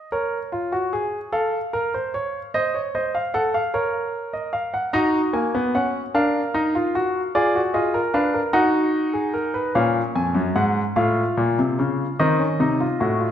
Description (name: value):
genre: classical, baroque-style 4-part fugue for grand piano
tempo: 50 BPM (dotted quarters)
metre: 6/8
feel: straight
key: unclear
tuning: A4 = 440 Hz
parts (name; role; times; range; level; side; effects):
- warm concert grand piano; solo; 0.0-13.3 s; F2 to Bb5; -20 LUFS; equal; none
room: wet recital hall reverb, RT60 1.3 s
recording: nothing above 10.7 kHz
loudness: -20 LUFS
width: side -9 dB against mid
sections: 0.0-13.3 A section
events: none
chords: 0.1 Bbm; 1.3 F/A; 2.5 F7/C; 3.7 Bbm; 4.9 Ebm; 6.2 Bb/D; 7.3 Bb7/F; 8.5 Ebm; 9.8 Bbm; 11.0 F/A; 12.2 F7